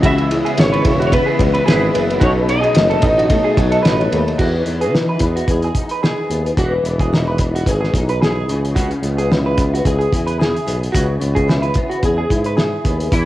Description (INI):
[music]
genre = indie pop, bedroom pop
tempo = 110 BPM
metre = 4/4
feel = swing 55% on 16ths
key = E major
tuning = A4 = 442 Hz
[part]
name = electric guitar through a small old amp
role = second line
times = 0.0-13.0 s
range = F#4 to B4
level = -23 LUFS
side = right 2 dB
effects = wide subtle chorus, cassette tape, tape echo
[part]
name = flamenco guitar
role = accompaniment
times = 0.0-13.3 s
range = B2 to G#4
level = -21 LUFS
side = left 2 dB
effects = ensemble chorus, warbly pitch drift, cassette tape
[part]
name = soft string machine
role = sustained chords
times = 0.0-4.4, 13.1-13.3 s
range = C#3 to E4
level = -25 LUFS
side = equal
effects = ensemble chorus, cassette tape
[part]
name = warm tuba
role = bass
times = 0.0-13.3 s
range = E1 to E3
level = -19 LUFS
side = equal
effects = tube saturation
[part]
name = cloth-damped thuddy drum kit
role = drums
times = 0.0-13.3 s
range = crash cymbal, hi-hat, kick drum, ride cymbal, snare drum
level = -18 LUFS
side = equal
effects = cassette tape
[part]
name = electric guitar through a small old amp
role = melody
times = 0.1-4.1, 13.1-13.3 s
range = E4 to E5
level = -19 LUFS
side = equal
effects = ensemble chorus
[sound]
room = light reverb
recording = home recording on cassette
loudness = -14 LUFS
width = side -15 dB against mid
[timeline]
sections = 0.0-4.4 A section; 4.4-13.1 B section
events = none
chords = 0.0 C#m7; 2.2 B7; 4.4 Emaj7; 8.5 C#m7